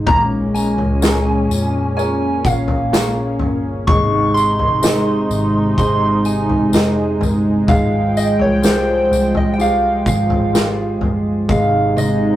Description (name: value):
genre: pop ballad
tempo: 63 BPM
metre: 4/4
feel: straight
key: Ab major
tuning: A4 = 440 Hz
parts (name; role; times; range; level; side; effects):
- clear concert grand piano; accompaniment; 0.0-12.4 s; Ab3 to Eb5; -24 LUFS; equal; none
- warm analog pad; sustained chords; 0.0-12.4 s; Bb2 to G5; -18 LUFS; equal; chorus
- vintage muted fingered electric bass; bass; 0.0-12.4 s; F1 to F2; -23 LUFS; equal; none
- soft struck synth lead; melody; 0.1-12.4 s; C5 to Db6; -19 LUFS; right 1 dB; chorus, ping-pong delay
- loose indie drum kit; drums; 0.1-12.2 s; kick drum, snare drum, toms; -19 LUFS; left 1 dB; none
- tambourine; percussion; 0.6-12.2 s; none; -31 LUFS; left 4 dB; none
room: wet studio reverb, RT60 0.6 s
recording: rough rehearsal-room recording, tube saturation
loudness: -14 LUFS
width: side -13 dB against mid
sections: 0.0-12.4 A section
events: drum fill 11.5-12.4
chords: 0.1 Bbm7; 3.9 Ab; 7.7 Fmadd9/Ab; 11.5 Ab